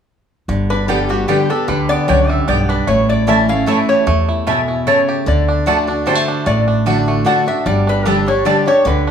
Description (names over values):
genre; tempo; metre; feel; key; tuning
bluegrass; 151 BPM; 3/4; swing 53% on 8ths; G lydian; A4 = 440 Hz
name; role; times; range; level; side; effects
bluegrass banjo; melody; 0.5-9.1 s; D3 to G4; -23 LUFS; right 2 dB; none
picked steel-string acoustic guitar; accompaniment; 0.5-9.1 s; E2 to G4; -17 LUFS; equal; none
upright bass; bass; 0.5-9.1 s; G1 to E2; -20 LUFS; equal; none
lap resonator guitar; melody; 0.7-9.1 s; F#4 to F#5; -17 LUFS; left 2 dB; none
mandolin; stabs; 0.9-8.6 s; A3 to A5; -20 LUFS; right 3 dB; none
room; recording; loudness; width
moderate large studio reverb, RT60 1.2 s; band playing live in one room; -13 LUFS; side -8 dB against mid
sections
0.5-9.1 A section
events
none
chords
0.5 G; 2.9 A; 5.3 D; 7.7 Gsus2